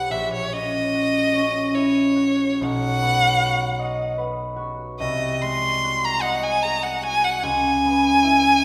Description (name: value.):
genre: classical, romantic duo for violin and harp.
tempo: 74 BPM.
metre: 3/4.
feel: uneven beats, rubato.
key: B major.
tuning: A4 = 439 Hz.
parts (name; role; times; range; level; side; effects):
rich violin; melody; 0.0-8.6 s; C#5 to B#5; -23 LUFS; equal; none.
concert harp; accompaniment; 0.0-8.6 s; A#1 to E5; -25 LUFS; equal; none.
room: wet scoring stage reverb, RT60 1.8 s.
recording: recorded in a church or concert hall.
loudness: -21 LUFS.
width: mono.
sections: 0.0-8.6 A section.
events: none.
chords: 0.1 F#7/A#; 2.6 B; 5.0 G#7/B#; 7.4 C#m7.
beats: | 0.12 0.94 1.74 | 2.62 3.41 4.17 | 4.99 5.84 6.63 | 7.44 8.25.